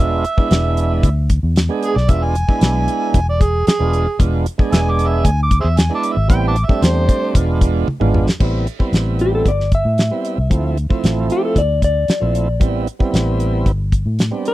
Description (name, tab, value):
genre	straight-eighth soul blues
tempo	114 BPM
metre	4/4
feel	straight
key	A minor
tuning	A4 = 440 Hz
part	overdriven harmonica	second line	0.0-7.3 s	G#4 to D6	-21 LUFS	right 2 dB	none
part	tonewheel organ	accompaniment	0.0-14.5 s	F3 to G#4	-21 LUFS	right 4 dB	overdrive, slow rotary speaker
part	vintage muted fingered electric bass	bass	0.0-14.3 s	E1 to A2	-18 LUFS	equal	none
part	damped 70s drum kit	drums	0.2-14.5 s	crash cymbal, hi-hat, kick drum, snare drum, toms	-15 LUFS	equal	none
part	clean lap steel guitar	melody	9.2-14.5 s	G4 to E5	-19 LUFS	left 2 dB	slapback echo
room	little or no reverb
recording	dry, close 1970s-style studio recording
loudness	-14 LUFS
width	side -16 dB against mid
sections	0.0-8.4 A section; 8.4-14.5 B section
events	harmonica solo 0.0-8.4; drum fill 7.9-8.4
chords	0.0 E7b9; 6.3 Am7; 7.4 E7b9; 8.4 Am7; 10.5 Dm7; 12.6 Am7